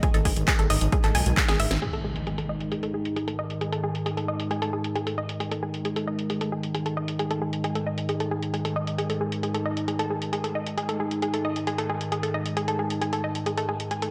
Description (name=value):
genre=driving peak-time techno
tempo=134 BPM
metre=4/4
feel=straight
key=unclear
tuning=A4 = 440 Hz
part: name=analog pluck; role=riff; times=0.0-14.1 s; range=G#4 to G#5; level=-32 LUFS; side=equal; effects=chorus, tube saturation, sidechain pumping, tape echo
part: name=analog drone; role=drone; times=0.0-14.1 s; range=G#2 to D#3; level=-32 LUFS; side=equal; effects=chorus, sidechain pumping
part: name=electronic kick drum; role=drums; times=0.0-1.5 s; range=none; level=-26 LUFS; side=equal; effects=none
part: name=techno drum kit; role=drums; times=0.0-14.1 s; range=crash cymbal, handclaps, hi-hat, snare drum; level=-34 LUFS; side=equal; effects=low-pass filter on snare, sidechain pumping on hats, low-pass filter on hats, sidechain pumping on cymbals, low-pass filter on cymbals
part: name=gritty driven synth bass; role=bass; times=0.1-1.8 s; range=G#1 to B1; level=-27 LUFS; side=equal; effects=sidechain pumping
part: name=impact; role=sound effects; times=1.8-3.6 s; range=none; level=-38 LUFS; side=equal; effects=none
room=moderate plate reverb, RT60 1.4 s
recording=dreamy mix soaked in reverb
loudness=-27 LUFS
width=mono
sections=0.0-1.8 A section; 1.8-14.1 B section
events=drum fill 1.5-1.8; impact 1.8-3.6; filter sweep on synth arpeggio sound 1.8-14.1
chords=0.0 G#m; 1.8 G#5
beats=| 0.03 0.48 0.93 1.37 | 1.82 2.27 2.72 3.16 | 3.61 4.06 4.51 4.96 | 5.40 5.85 6.30 6.75 | 7.19 7.64 8.09 8.54 | 8.98 9.43 9.88 10.33 | 10.78 11.22 11.67 12.12 | 12.57 13.02 13.46 13.91